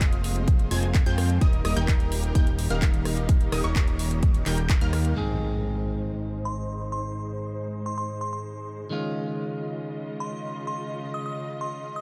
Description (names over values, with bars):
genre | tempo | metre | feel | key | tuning
EDM, festival progressive house | 128 BPM | 4/4 | straight | Ab major | A4 = 445 Hz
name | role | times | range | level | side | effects
rich symphonic string section | sustained chords | 0.0-12.0 s | Ab2 to Eb5 | -38 LUFS | equal | sidechain pumping, low-pass filter
unison pluck | arpeggios | 0.0-5.1 s | Db6 to Ab6 | -40 LUFS | equal | sidechain pumping, delay
supersaw stab | riff | 0.0-5.1 s | G3 to Ab5 | -35 LUFS | equal | sidechain pumping, low-pass filter, delay
fat analog bass | bass | 0.0-5.1 s | Eb1 to F2 | -28 LUFS | equal | sidechain pumping
big-room dance drum kit | drums | 0.0-5.1 s | handclaps, hi-hat, rim click | -36 LUFS | equal | low-pass filter on hats, low-pass filter on snare
electronic kick drum | drums | 0.0-4.8 s | none | -24 LUFS | equal | none
clean electric guitar | accompaniment | 5.2-12.0 s | Ab2 to Ab4 | -35 LUFS | equal | sidechain pumping, delay
impact | sound effects | 5.2-7.0 s | none | -36 LUFS | equal | none
glassy synth bell | melody | 6.5-12.0 s | C6 to Eb6 | -37 LUFS | equal | chorus, delay
room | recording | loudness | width
little or no reverb | none | -26 LUFS | mono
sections
0.0-5.2 A section; 5.2-12.0 B section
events
drop 0.0-5.2; impact 5.2-7.0; filter sweep on string section 5.2-12.0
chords
0.0 Fm; 1.4 Eb; 5.2 Ab; 8.9 Dbadd9